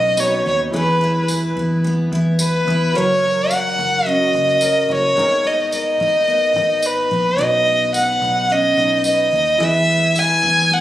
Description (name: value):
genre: acoustic pop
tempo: 108 BPM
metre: 4/4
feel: swing 55% on 16ths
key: B major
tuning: A4 = 440 Hz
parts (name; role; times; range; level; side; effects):
- warm violin; melody; 0.0-10.8 s; B4 to G#5; -16 LUFS; equal; digital delay
- picked steel-string acoustic guitar; accompaniment; 0.0-10.8 s; G#2 to B4; -24 LUFS; equal; double-tracked left and right
- warm grand piano; accompaniment; 0.0-10.8 s; B3 to A#5; -29 LUFS; left 1 dB; none
- vintage muted fingered electric bass; bass; 0.0-10.8 s; F#1 to E2; -24 LUFS; equal; none
- tambourine; percussion; 0.2-10.3 s; none; -25 LUFS; equal; none
room: light reverb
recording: recorded on a phone in the room, studio reverb, compression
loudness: -14 LUFS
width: side -13 dB against mid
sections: 0.0-10.8 A section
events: none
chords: 0.0 Badd9; 0.7 E; 2.9 F#; 5.2 G#madd9; 7.4 Badd9; 9.6 E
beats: 0.18 | 0.73 1.28 1.84 2.39 | 2.95 3.50 4.06 4.61 | 5.17 5.72 6.27 6.83 | 7.38 7.94 8.49 9.05 | 9.60 10.16 10.71